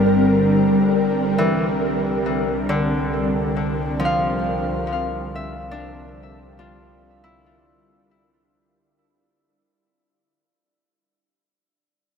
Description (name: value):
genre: ambient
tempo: 69 BPM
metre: 4/4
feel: straight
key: unclear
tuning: A4 = 440 Hz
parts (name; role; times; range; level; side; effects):
- ethereal airy pad; sustained chords; 0.0-8.5 s; D3 to Bb4; -20 LUFS; equal; ensemble chorus, built-in reverb
- Celtic harp; arpeggios; 0.0-10.3 s; D3 to Bb5; -25 LUFS; left 1 dB; ping-pong delay
- clear studio double bass section; bass; 0.0-8.5 s; G1 to C2; -32 LUFS; equal; none
- bowed-like drone; drone; 0.0-8.6 s; G3 to D4; -29 LUFS; right 1 dB; built-in reverb, phaser
room: wet huge ambient reverb, RT60 8.2 s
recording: none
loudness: -18 LUFS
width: side -6 dB against mid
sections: 0.0-8.5 A section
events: fade-out 0.0-8.5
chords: 0.0 Gm; 1.6 Csus4